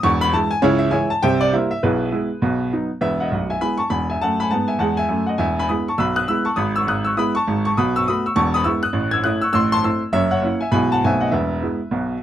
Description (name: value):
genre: jazz, stride piano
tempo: 202 BPM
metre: 4/4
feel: swing 62% on 8ths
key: E major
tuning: A4 = 440 Hz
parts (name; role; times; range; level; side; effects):
- bright baby grand piano; solo; 0.0-12.2 s; B0 to G#6; -17 LUFS; equal; none
room: light reverb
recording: dry, close 1970s-style studio recording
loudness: -17 LUFS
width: side -11 dB against mid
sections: 0.0-3.0 A section; 3.0-12.2 B section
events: none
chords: 0.0 E; 0.6 C#m; 1.2 C7; 1.8 E/B; 2.4 B; 3.0 E; 4.2 B7(no3)/F#; 5.4 E; 6.6 E/G#; 7.8 B5; 8.4 E; 8.9 A; 9.5 Am; 10.1 F#7; 10.7 E/B; 11.0 B7b9; 11.3 E